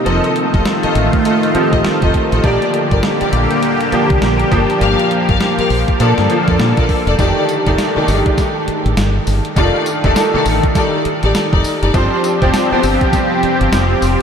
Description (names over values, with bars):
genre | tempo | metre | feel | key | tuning
R&B, new jack swing | 101 BPM | 4/4 | swing 60% on 16ths | unclear | A4 = 440 Hz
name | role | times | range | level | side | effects
clear grand piano | accompaniment | 0.0-14.2 s | Eb3 to A4 | -17 LUFS | right 1 dB | ensemble chorus, shimmer reverb
lush unison pad | sustained chords | 0.0-7.2, 11.9-14.2 s | D3 to A4 | -18 LUFS | equal | chorus, phaser, shimmer reverb
warm studio string section | stabs | 0.1-12.9 s | Eb4 to F5 | -20 LUFS | left 2 dB | ping-pong delay, shimmer reverb
deep dub fingered electric bass | bass | 0.1-14.1 s | E1 to Bb2 | -17 LUFS | equal | none
crisp 8-bit digital drum machine | drums | 0.1-14.2 s | hi-hat, kick drum, snare drum, tambourine | -20 LUFS | equal | none
room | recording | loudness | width
wet huge ambient reverb, RT60 7.2 s | dreamy mix soaked in reverb | -12 LUFS | side -7 dB against mid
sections
0.0-7.2 A section; 7.2-14.2 B section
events
none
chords
0.1 F7; 2.4 Bb6; 4.5 Gm7; 6.0 Bbmaj7; 7.2 F13; 11.9 G7sus4